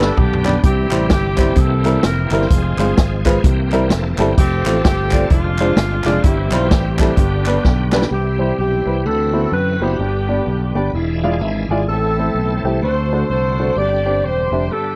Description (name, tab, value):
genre	uptempo gospel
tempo	128 BPM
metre	4/4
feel	swing 61% on 8ths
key	C major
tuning	A4 = 437 Hz
part	clear saxophone section	melody	0.0-15.0 s	G3 to D5	-26 LUFS	equal	none
part	warm upright piano	accompaniment	0.0-15.0 s	G2 to G#5	-23 LUFS	equal	none
part	bright tonewheel organ	sustained chords	0.0-15.0 s	D3 to G#5	-29 LUFS	equal	slow rotary speaker, chorus vibrato
part	fingered electric bass	bass	0.0-14.7 s	E1 to F#2	-22 LUFS	equal	none
part	swinging big-band drum kit	drums	0.0-8.1 s	hi-hat, kick drum, snare drum, toms	-18 LUFS	equal	none
part	group handclap	percussion	0.5-8.0 s	none	-32 LUFS	equal	none
part	mellow alto saxophone	melody	8.1-15.0 s	G4 to D5	-24 LUFS	equal	none
room	studio reverb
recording	dry, close 1970s-style studio recording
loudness	-17 LUFS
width	mono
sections	0.0-8.1 A section; 8.1-15.0 B section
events	drum fill 0.0-0.6, 7.6-8.1; tonewheel organ fill 10.5-11.9; upright piano fill 10.9-11.9; break 14.7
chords	0.0 G; 0.6 C; 1.6 C7; 2.5 Fm; 3.4 C7; 4.4 F; 5.3 Fm6; 6.2 C/G; 7.2 G; 8.1 C; 9.1 D13; 10.0 G; 10.9 E7b9; 11.9 Am; 12.8 D7; 13.8 Gsus4